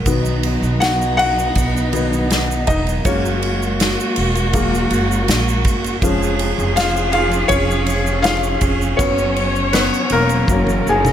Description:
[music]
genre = pop ballad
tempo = 80 BPM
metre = 4/4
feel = straight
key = unclear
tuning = A4 = 440 Hz
[part]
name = felt-muted upright piano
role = accompaniment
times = 0.0-11.1 s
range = D#3 to G#5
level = -19 LUFS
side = left 3 dB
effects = none
[part]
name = warm studio string section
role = sustained chords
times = 0.0-11.1 s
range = E#3 to C#5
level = -21 LUFS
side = equal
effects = none
[part]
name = upright bass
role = bass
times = 0.0-11.1 s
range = E1 to B1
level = -21 LUFS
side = right 1 dB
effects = none
[part]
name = unplugged drum kit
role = drums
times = 0.1-11.1 s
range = kick drum, ride cymbal, snare drum, toms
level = -21 LUFS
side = right 1 dB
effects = none
[part]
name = tube shaker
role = percussion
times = 0.1-11.1 s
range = none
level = -32 LUFS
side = right 10 dB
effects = none
[sound]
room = light reverb, studio ambience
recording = none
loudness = -15 LUFS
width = side -10 dB against mid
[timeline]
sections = 0.0-11.1 A section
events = felt piano solo 0.0-11.1; drum fill 10.5-11.1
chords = 0.1 B; 3.1 F#add9; 6.0 C#/E#; 9.0 F#sus4; 10.5 F#

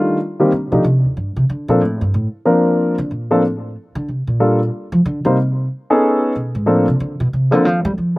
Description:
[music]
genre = jazz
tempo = 185 BPM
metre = 4/4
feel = swing 64% on 8ths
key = Bb major, G minor from 4.1 s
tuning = A4 = 440 Hz
[part]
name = warm baby grand piano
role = melody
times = 0.0-8.2 s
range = Eb3 to C5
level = -15 LUFS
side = equal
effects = none
[part]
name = upright bass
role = bass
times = 0.0-8.2 s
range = Eb2 to G3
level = -18 LUFS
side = equal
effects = none
[sound]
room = little or no reverb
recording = recorded outdoors, with no room sound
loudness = -14 LUFS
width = side -20 dB against mid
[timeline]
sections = 0.0-4.1 A section; 4.1-8.2 A section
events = upright bass solo 0.0-8.2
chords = 0.2 Cm (rootless); 0.8 Eb6; 1.5 Bbmaj9; 4.1 Gm; 5.4 N.C.; 6.0 B13; 6.7 Bbmaj9

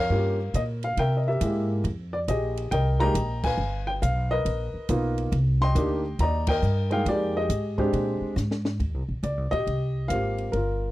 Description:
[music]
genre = jazz piano trio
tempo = 138 BPM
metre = 4/4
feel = swing 66% on 8ths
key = Eb major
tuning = A4 = 441 Hz
[part]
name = warm upright piano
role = melody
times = 0.0-10.9 s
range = Ab3 to C6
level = -26 LUFS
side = equal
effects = none
[part]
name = upright bass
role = bass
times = 0.0-10.9 s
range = G1 to C3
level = -26 LUFS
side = equal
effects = none
[part]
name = compact cocktail drum kit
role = drums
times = 0.5-10.7 s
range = crash cymbal, hi-hat, kick drum, ride cymbal, snare drum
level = -33 LUFS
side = equal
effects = none
[sound]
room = little or no reverb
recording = dry, close 1970s-style studio recording, faint mains hum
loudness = -23 LUFS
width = side -16 dB against mid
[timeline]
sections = 0.0-8.8 A section; 8.8-10.9 B section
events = band accent 3.4, 6.4; drum fill 8.4-8.8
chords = 0.1 Gm7b5; 1.0 C7b13; 1.8 Fm11; 3.6 G7alt; 5.3 Cm9; 7.1 Fm11; 7.9 Bb13; 8.8 Eb6

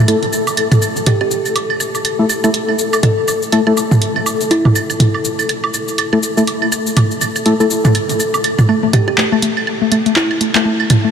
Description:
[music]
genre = minimal techno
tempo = 122 BPM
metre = 4/4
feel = swing 59% on 16ths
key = unclear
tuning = A4 = 440 Hz
[part]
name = swarming drone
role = texture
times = 0.0-8.7 s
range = A4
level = -23 LUFS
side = left 4 dB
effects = built-in reverb
[part]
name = percussive organ stab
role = stabs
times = 0.1-7.7 s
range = A3 to A4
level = -19 LUFS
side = left 1 dB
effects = chorus, diffuse ambient delay
[part]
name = punchy analog drum machine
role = drums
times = 0.1-11.0 s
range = cabasa, handclaps, hi-hat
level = -20 LUFS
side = left 1 dB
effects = none
[part]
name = electronic woodblock, claves and toms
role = percussion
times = 0.1-11.0 s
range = none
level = -16 LUFS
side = right 2 dB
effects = diffuse ambient delay
[part]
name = kalimba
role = melody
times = 1.1-5.0, 8.9-10.7 s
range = E4 to A4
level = -22 LUFS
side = right 1 dB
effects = vintage 12-bit sampler grit, diffuse ambient delay
[part]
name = mallet-like synth pluck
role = riff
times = 8.7-11.1 s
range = A3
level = -16 LUFS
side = left 3 dB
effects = chorus, tape echo
[sound]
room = wet huge ambient reverb, RT60 8.8 s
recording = dreamy mix soaked in reverb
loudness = -12 LUFS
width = side -7 dB against mid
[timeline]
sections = 0.0-8.7 A section; 8.7-11.1 B section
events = build-up 8.7-11.1; filter sweep on synth arpeggio sound 8.7-11.1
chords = 0.0 A5

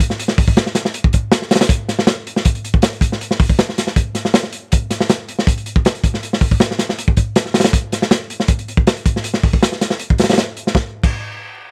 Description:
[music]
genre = drum and bass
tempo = 159 BPM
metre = 4/4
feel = straight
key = none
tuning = none
[part]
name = crunchy breakbeat drum kit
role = drums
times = 0.0-11.2 s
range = crash cymbal, hi-hat, kick drum, snare drum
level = -17 LUFS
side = equal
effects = none
[sound]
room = little or no reverb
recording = vinyl crackle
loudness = -17 LUFS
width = mono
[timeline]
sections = 0.0-10.8 A section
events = none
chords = none

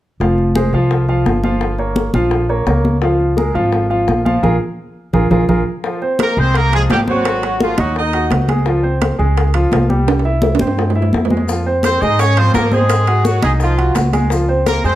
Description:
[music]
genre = latin, salsa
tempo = 170 BPM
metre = 4/4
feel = straight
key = F minor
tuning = A4 = 441 Hz
[part]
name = clear baby grand piano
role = accompaniment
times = 0.2-15.0 s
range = F3 to Gb5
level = -18 LUFS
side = right 1 dB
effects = none
[part]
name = upright bass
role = bass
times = 0.2-15.0 s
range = F1 to Ab2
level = -16 LUFS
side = equal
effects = none
[part]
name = bongos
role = percussion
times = 0.2-15.0 s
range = none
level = -24 LUFS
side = left 5 dB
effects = none
[part]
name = congas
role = percussion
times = 0.2-15.0 s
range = none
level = -20 LUFS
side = equal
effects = none
[part]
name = brilliant horn section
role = melody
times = 6.2-8.3, 11.8-15.0 s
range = F3 to Eb5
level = -17 LUFS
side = right 1 dB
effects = tape echo
[part]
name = timbales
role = percussion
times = 6.2-14.8 s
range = none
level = -23 LUFS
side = right 5 dB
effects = none
[part]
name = maracas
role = percussion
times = 11.5-15.0 s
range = none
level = -34 LUFS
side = left 5 dB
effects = none
[sound]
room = moderate large studio reverb, RT60 1.0 s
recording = none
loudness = -13 LUFS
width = side -14 dB against mid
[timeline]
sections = 0.2-5.8 A section; 5.8-15.0 B section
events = drum fill 4.4-5.8, 10.1-11.5; band accent 4.4-5.8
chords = 0.2 Fm; 1.6 Gm7b5; 3.0 Db6; 4.4 Bb5; 5.8 Fm; 7.3 Ab7; 8.7 Dbmaj7; 10.1 C; 11.5 Fm7; 12.9 Ab7; 14.3 Dbmaj7

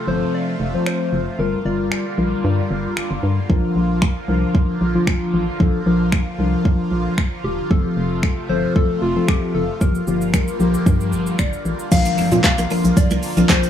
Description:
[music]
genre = dance-pop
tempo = 114 BPM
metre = 4/4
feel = straight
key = Bb major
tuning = A4 = 440 Hz
[part]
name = soft struck synth lead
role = melody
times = 0.0-3.2, 7.4-13.7 s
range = F4 to F5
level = -26 LUFS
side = left 3 dB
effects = chorus, digital delay
[part]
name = supersaw pad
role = sustained chords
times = 0.0-13.7 s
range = C3 to F4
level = -27 LUFS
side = right 2 dB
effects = phaser, sidechain pumping
[part]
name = mellow tine electric piano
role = accompaniment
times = 0.1-13.7 s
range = F3 to C5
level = -21 LUFS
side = left 3 dB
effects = sidechain pumping
[part]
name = organ-like FM bass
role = bass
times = 0.1-13.7 s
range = E1 to Bb2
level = -21 LUFS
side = equal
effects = sidechain pumping
[part]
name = deep house drum kit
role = drums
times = 0.9-13.7 s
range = crash cymbal, finger snaps, handclaps, hi-hat, kick drum, shaker, snare drum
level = -18 LUFS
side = equal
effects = none
[part]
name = egg shaker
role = percussion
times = 11.9-13.7 s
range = none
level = -37 LUFS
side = right 13 dB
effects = none
[part]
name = impact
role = sound effects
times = 11.9-13.7 s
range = none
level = -28 LUFS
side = right 2 dB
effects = none
[part]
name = clean electric guitar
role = riff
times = 12.1-13.5 s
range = Bb3 to D4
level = -29 LUFS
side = right 6 dB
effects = ensemble chorus
[sound]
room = digital ambience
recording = none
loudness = -16 LUFS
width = side -10 dB against mid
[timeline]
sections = 0.0-11.9 A section; 11.9-13.7 B section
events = impact 11.9-13.7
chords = 0.0 F; 1.4 Gm7; 3.5 Bb; 7.7 F; 9.8 Gm7; 11.9 Bb

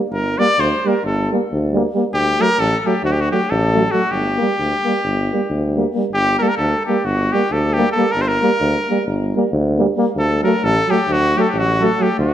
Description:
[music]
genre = balkan folk, Balkan brass band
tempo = 268 BPM (eighths)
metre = 9/8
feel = straight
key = G harmonic minor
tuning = A4 = 445 Hz
[part]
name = clear cornet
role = melody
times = 0.1-12.3 s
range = F#4 to D5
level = -18 LUFS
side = equal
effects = none
[part]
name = warm tuba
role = bass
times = 0.1-12.3 s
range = G1 to D2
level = -20 LUFS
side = equal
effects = none
[part]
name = mellow euphonium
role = accompaniment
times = 0.4-12.1 s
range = F#3 to G3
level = -22 LUFS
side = right 5 dB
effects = none
[part]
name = warm trombone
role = accompaniment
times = 0.4-12.1 s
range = A3 to Bb3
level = -23 LUFS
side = left 5 dB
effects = none
[sound]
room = wet recital hall reverb, RT60 1.4 s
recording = none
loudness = -15 LUFS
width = side -10 dB against mid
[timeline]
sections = 0.0-6.1 A section; 6.1-12.3 A section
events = none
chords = 0.0 Gm; 2.1 D; 4.1 Gm; 10.2 D

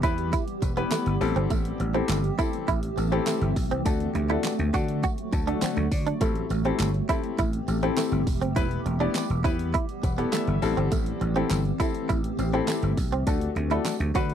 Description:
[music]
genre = dance-pop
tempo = 102 BPM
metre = 4/4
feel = straight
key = A dorian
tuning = A4 = 440 Hz
[part]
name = warm grand piano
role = accompaniment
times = 0.0-14.3 s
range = A3 to A5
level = -30 LUFS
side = left 9 dB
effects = sidechain pumping
[part]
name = granular cloud pad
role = sustained chords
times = 0.0-14.3 s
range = D3 to G4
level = -32 LUFS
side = right 1 dB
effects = built-in reverb, sidechain pumping
[part]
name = direct-recorded clean electric guitar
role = riff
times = 0.0-14.3 s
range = A3 to F#4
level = -29 LUFS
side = right 7 dB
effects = ensemble chorus
[part]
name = vintage slap bass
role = bass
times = 0.0-14.3 s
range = E1 to D3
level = -27 LUFS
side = equal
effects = sidechain pumping
[part]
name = pop drum kit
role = drums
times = 0.0-14.3 s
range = handclaps, hi-hat, kick drum, snare drum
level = -28 LUFS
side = equal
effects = none
[part]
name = tambourine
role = percussion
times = 0.0-14.3 s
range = none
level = -44 LUFS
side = right 25 dB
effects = none
[sound]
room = little or no reverb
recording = dry, close 1970s-style studio recording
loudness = -23 LUFS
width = side -9 dB against mid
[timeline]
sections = 0.0-14.3 A section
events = grand piano fill 5.0-6.2, 9.7-10.9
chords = 0.0 Em; 1.2 Am7; 3.9 D; 6.2 Am7; 8.6 Em; 10.6 Am7; 13.3 D

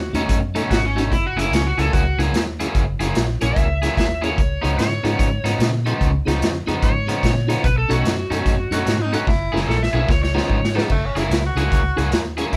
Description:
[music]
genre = electric blues shuffle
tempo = 147 BPM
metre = 4/4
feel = swing 64% on 8ths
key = F# mixolydian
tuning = A4 = 443 Hz
[part]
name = overdriven slide guitar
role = melody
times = 0.0-10.9 s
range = C#4 to E5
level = -27 LUFS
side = equal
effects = none
[part]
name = vintage muted fingered electric bass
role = bass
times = 0.0-12.6 s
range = F#1 to A#2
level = -25 LUFS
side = equal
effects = none
[part]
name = tonewheel organ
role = accompaniment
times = 0.1-12.5 s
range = A3 to B4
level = -28 LUFS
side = equal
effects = slow rotary speaker, overdrive, chorus vibrato
[part]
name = vintage drum kit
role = drums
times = 0.1-12.6 s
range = crash cymbal, hi-hat, kick drum, snare drum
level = -25 LUFS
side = equal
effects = none
[part]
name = cranked stack guitar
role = riff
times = 0.2-12.6 s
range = B2 to G#4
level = -27 LUFS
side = equal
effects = overdrive
[part]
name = edgy tenor saxophone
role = second line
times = 8.7-12.6 s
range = A3 to F#4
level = -28 LUFS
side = equal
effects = none
[sound]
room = moderate studio reverb, RT60 0.5 s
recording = band playing live in one room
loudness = -20 LUFS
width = mono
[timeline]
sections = 0.0-10.9 A section; 10.9-12.6 B section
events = drum fill 9.3-10.9; tenor saxophone solo 10.9-12.6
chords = 0.0 B9; 1.1 F#9; 4.4 C#9; 7.6 B9; 9.3 F#9; 10.1 C#9; 10.9 F#9

